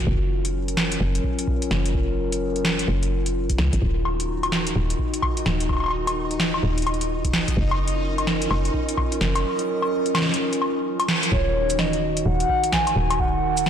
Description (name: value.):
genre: IDM.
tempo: 128 BPM.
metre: 4/4.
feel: swing 62% on 16ths.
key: Eb minor.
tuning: A4 = 438 Hz.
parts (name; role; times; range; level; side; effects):
warbly tape-like pad; sustained chords; 0.0-13.7 s; Eb3 to Bb4; -27 LUFS; equal; chorus, built-in reverb.
woody FM bass; bass; 0.0-13.7 s; Eb1 to Db2; -24 LUFS; equal; tube saturation.
electronic kick drum; drums; 0.0-13.3 s; none; -26 LUFS; equal; none.
electro analog drum machine; drums; 0.4-13.7 s; hi-hat, shaker, snare drum, woodblock; -25 LUFS; equal; tape echo.
backwards swelling texture; texture; 4.9-11.3 s; Eb4 to Eb5; -33 LUFS; left 1 dB; built-in reverb.
warbly nostalgic lead; melody; 11.3-13.7 s; Db5 to Ab5; -23 LUFS; left 1 dB; lush chorus, cassette tape.
room: moderate lush hall reverb, RT60 2.0 s.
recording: blown-out, overdriven recording, overdrive.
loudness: -20 LUFS.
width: side -9 dB against mid.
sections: 0.0-11.3 A section; 11.3-13.7 B section.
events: band accent 11.1.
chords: 0.1 Gbmaj7; 3.8 Ebmadd9; 7.6 Gbmaj7; 11.3 Ebm.